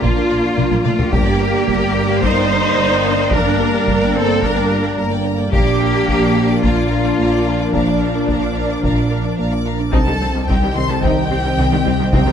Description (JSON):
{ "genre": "cinematic, hybrid orchestral and electronic film score", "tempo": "109 BPM", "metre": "4/4", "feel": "straight", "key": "unclear", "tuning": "A4 = 439 Hz", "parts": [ { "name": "rich symphonic violin section", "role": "second line", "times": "0.0-12.3 s", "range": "F4 to D6", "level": "-27 LUFS", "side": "left 3 dB", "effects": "none" }, { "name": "rich symphonic viola section", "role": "accompaniment", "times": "0.0-12.3 s", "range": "Eb3 to Eb4", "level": "-23 LUFS", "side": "right 1 dB", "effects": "none" }, { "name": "hollow soft pad", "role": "sustained chords", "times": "0.0-12.3 s", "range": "Eb3 to Eb5", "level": "-22 LUFS", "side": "equal", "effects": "ensemble chorus" }, { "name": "warm French horn section", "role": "sustained chords", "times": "0.0-12.3 s", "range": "Bb3 to D5", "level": "-23 LUFS", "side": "left 5 dB", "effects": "none" }, { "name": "soft round pluck", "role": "arpeggios", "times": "0.0-12.3 s", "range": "C3 to Bb4", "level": "-27 LUFS", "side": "right 4 dB", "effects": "none" }, { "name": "rich symphonic cello section", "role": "bass", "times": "0.0-12.3 s", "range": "C2 to C5", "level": "-20 LUFS", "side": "right 1 dB", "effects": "none" }, { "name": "rich symphonic double bass section", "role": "bass", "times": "0.0-12.2 s", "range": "G1 to C2", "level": "-22 LUFS", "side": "right 2 dB", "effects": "none" }, { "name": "taiko ensemble", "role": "drums", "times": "0.0-12.3 s", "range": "none", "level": "-21 LUFS", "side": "left 1 dB", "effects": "none" }, { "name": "rich studio violin section", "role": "melody", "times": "9.9-12.3 s", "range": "G5 to C6", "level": "-23 LUFS", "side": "left 2 dB", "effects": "none" }, { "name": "warm trombone section", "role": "sustained chords", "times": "9.9-12.3 s", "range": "C3 to C4", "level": "-26 LUFS", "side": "right 4 dB", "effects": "none" }, { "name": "swelling detuned saw bass", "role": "bass", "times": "9.9-12.3 s", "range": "C2", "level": "-22 LUFS", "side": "left 1 dB", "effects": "none" } ], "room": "light reverb", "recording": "close, detailed microphones", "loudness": "-14 LUFS", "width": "side -8 dB against mid", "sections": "0.0-9.9 A section; 9.9-12.3 B section", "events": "drum fill 0.6-1.1", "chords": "0.0 Bb; 1.1 Gm; 5.5 Bb; 9.9 Cm", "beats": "0.03 0.58 | 1.13 1.68 2.23 2.78 | 3.33 3.88 4.43 4.98 | 5.53 6.08 6.63 7.18 | 7.73 8.29 8.84 9.39 | 9.94 10.49 11.04 11.59 | 12.14" }